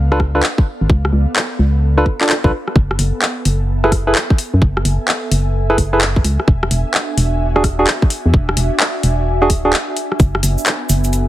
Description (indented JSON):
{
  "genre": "UK garage, two-step garage",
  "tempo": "129 BPM",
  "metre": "4/4",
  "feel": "swing 65% on 16ths",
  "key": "F# minor",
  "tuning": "A4 = 442 Hz",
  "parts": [
    { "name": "organ-like FM bass", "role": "bass", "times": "0.0-11.3 s", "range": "D1 to F#2", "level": "-15 LUFS", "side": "equal", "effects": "none" },
    { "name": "ethereal airy pad", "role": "texture", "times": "0.0-11.3 s", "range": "B3 to G#5", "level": "-25 LUFS", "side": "right 1 dB", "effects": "ensemble chorus, built-in reverb, sidechain pumping" },
    { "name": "barky tine electric piano", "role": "stabs", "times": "0.1-9.7 s", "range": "D4 to D5", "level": "-16 LUFS", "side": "right 1 dB", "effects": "tape echo" },
    { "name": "garage drum kit", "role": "drums", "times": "0.1-11.3 s", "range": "handclaps, hi-hat, rim click", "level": "-18 LUFS", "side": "left 1 dB", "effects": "none" },
    { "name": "electronic kick drum", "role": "drums", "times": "0.2-10.3 s", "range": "none", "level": "-13 LUFS", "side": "equal", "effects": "none" },
    { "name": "cabasa", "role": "percussion", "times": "10.2-11.3 s", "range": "none", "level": "-26 LUFS", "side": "right 3 dB", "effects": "none" }
  ],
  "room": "little or no reverb",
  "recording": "heavily compressed radio sound, multiband compression",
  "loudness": "-13 LUFS",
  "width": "side -14 dB against mid",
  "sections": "0.0-11.3 A section",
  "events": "fade-in on ambient pad 0.0-11.3; break 9.7-10.2",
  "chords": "0.0 C#7b9b13; 2.5 F#m11; 6.5 E9; 10.2 F#m11"
}